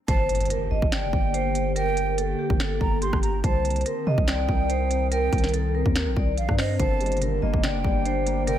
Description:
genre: hip hop, trap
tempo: 143 BPM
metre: 4/4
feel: half-time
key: G minor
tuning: A4 = 440 Hz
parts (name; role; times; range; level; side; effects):
- vibraphone with hard mallets; melody; 0.1-8.6 s; G4 to Eb5; -28 LUFS; equal; dub echo
- mellow hollow jazz flute; second line; 0.1-8.6 s; Eb5 to C6; -32 LUFS; right 7 dB; dub echo
- glassy FM pad; sustained chords; 0.4-8.6 s; D3 to Bb4; -32 LUFS; left 1 dB; ensemble chorus, built-in reverb
- long sustained 808-style bass; bass; 0.1-8.6 s; F1 to C3; -26 LUFS; equal; none
- trap drum kit; drums; 0.1-8.6 s; finger snaps, hi-hat, kick drum, rim click, snare drum; -25 LUFS; equal; none
- impact; sound effects; 0.1-1.8 s; none; -34 LUFS; equal; none
- dark concert grand piano; accompaniment; 6.8-8.6 s; D3 to D4; -30 LUFS; left 5 dB; dub echo
room: studio reverb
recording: echo-heavy mix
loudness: -21 LUFS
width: side -11 dB against mid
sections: 0.1-8.6 A section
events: impact 0.1-1.8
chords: 0.1 Gm; 3.4 Cm7; 6.8 Gm

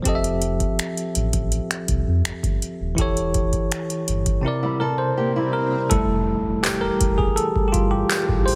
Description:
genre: contemporary R&B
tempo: 82 BPM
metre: 4/4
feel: straight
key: F major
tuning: A4 = 440 Hz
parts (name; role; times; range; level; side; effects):
- bell-like tine electric piano; accompaniment; 0.0-8.6 s; C3 to E5; -25 LUFS; equal; none
- sub bass with octave; bass; 0.1-8.6 s; Eb1 to F2; -27 LUFS; equal; none
- booming analog drum machine; drums; 0.1-8.6 s; finger snaps, handclaps, hi-hat, kick drum; -25 LUFS; equal; overdrive
- swell and impact; sound effects; 5.1-8.6 s; none; -35 LUFS; equal; none
- nylon-string guitar; arpeggios; 4.6-5.9 s; G3 to A4; -28 LUFS; equal; tape echo
- deep dark ambient pad; sustained chords; 6.9-8.6 s; E3 to G4; -31 LUFS; equal; chorus, built-in reverb
room: light reverb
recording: heavily compressed radio sound, multiband compression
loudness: -22 LUFS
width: mono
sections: 0.0-5.9 A section; 5.9-8.6 B section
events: drums muted 4.4-5.9; swell 5.1-5.9; impact 5.9-8.6; tine electric piano solo 5.9-8.6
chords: 0.1 Fmaj9; 3.0 A7/E; 4.4 C7; 5.9 Fmaj9

